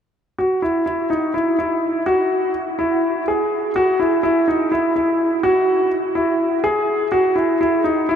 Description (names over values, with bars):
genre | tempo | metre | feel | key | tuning
progressive instrumental, progressive | 250 BPM (eighths) | 7/8 | straight | E major | A4 = 444 Hz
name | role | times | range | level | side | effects
clear grand piano | solo | 0.4-8.2 s | D#4 to G#4 | -16 LUFS | equal | none
room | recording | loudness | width
wet huge ambient reverb, RT60 8.3 s | in a vast, echoing space | -16 LUFS | side -8 dB against mid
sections
0.4-3.8 A section; 3.8-8.2 B section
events
none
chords
none